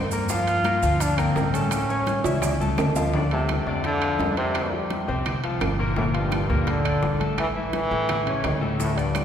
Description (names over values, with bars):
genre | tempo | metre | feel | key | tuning
latin, salsa | 169 BPM | 4/4 | straight | D minor | A4 = 437 Hz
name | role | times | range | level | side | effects
clear concert grand piano | accompaniment | 0.0-9.2 s | A2 to C#6 | -27 LUFS | left 2 dB | none
upright bass | bass | 0.0-9.2 s | G1 to G2 | -26 LUFS | equal | none
bongos | percussion | 0.1-9.2 s | none | -35 LUFS | left 3 dB | none
congas | percussion | 0.1-9.2 s | none | -34 LUFS | equal | none
maracas | percussion | 0.1-3.1, 8.8-9.2 s | none | -37 LUFS | right 7 dB | none
bright trombone | melody | 0.3-9.2 s | G2 to F4 | -26 LUFS | equal | none
timbales | percussion | 0.5-9.2 s | none | -31 LUFS | right 3 dB | none
claves | percussion | 0.7-9.2 s | none | -40 LUFS | right 4 dB | none
room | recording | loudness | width
wet church reverb, RT60 3.5 s | recorded in a church or concert hall | -21 LUFS | side -9 dB against mid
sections
0.0-3.1 A section; 3.1-9.2 B section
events
drum fill 2.2-3.1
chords
0.3 Gm7; 1.7 A; 3.1 Dm; 4.5 Fsus2; 6.0 Gm7; 7.4 A5; 8.1 A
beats
| 0.30 0.65 1.01 1.36 | 1.72 2.07 2.42 2.78 | 3.13 3.49 3.84 4.20 | 4.55 4.90 5.26 5.61 | 5.97 6.32 6.67 7.03 | 7.38 7.74 8.09 8.44 | 8.80 9.15